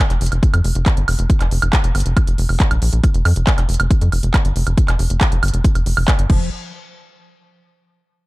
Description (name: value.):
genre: psychedelic trance.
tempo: 138 BPM.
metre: 4/4.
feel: straight.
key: unclear.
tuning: A4 = 440 Hz.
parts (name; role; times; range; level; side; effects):
tight sequencer bass; bass; 0.1-6.5 s; F1 to F2; -17 LUFS; equal; none.
techno drum kit; drums; 0.1-6.4 s; crash cymbal, handclaps, hi-hat, woodblock; -22 LUFS; right 2 dB; none.
electronic kick drum; drums; 0.4-6.4 s; none; -16 LUFS; equal; overdrive.
liquid acid bass; riff; 6.3-6.5 s; F3; -32 LUFS; left 3 dB; phaser, auto-pan, sidechain pumping, dub echo.
room: little or no reverb.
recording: dark, warm production.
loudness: -14 LUFS.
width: side -20 dB against mid.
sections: 0.0-6.5 A section; 6.5-8.3 B section.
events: none.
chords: none.